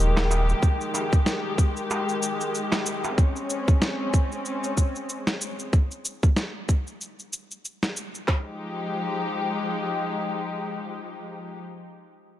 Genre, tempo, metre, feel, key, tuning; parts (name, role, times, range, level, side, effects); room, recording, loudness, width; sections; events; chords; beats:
organic downtempo; 94 BPM; 4/4; swing 57% on 16ths; F minor; A4 = 440 Hz
muted studio string section; sustained chords; 0.0-11.6 s; Eb3 to G4; -28 LUFS; left 2 dB; sidechain pumping
warm sub bass; bass; 0.0-0.5 s; Eb1; -21 LUFS; equal; tube saturation, sidechain pumping
electronic snare drum and shaker; drums; 0.2-8.3 s; -29 LUFS; equal
darbuka; percussion; 0.2-3.2 s; -35 LUFS; right 3 dB
organic electronic drum kit; drums; 0.6-8.5 s; handclaps, kick drum, snare drum; -20 LUFS; equal
moderate lush hall reverb, RT60 2.5 s; dark, warm production; -23 LUFS; side -13 dB against mid
0.0-8.3 A section; 8.3-10.8 B section
0.0 Fm9 (rootless); 3.2 Abadd11; 8.3 Fm9
| 0.62 1.26 1.90 2.54 | 3.18 3.82 4.45 5.09 | 5.73 6.37 7.01 7.64 | 8.28 8.92 9.56 10.20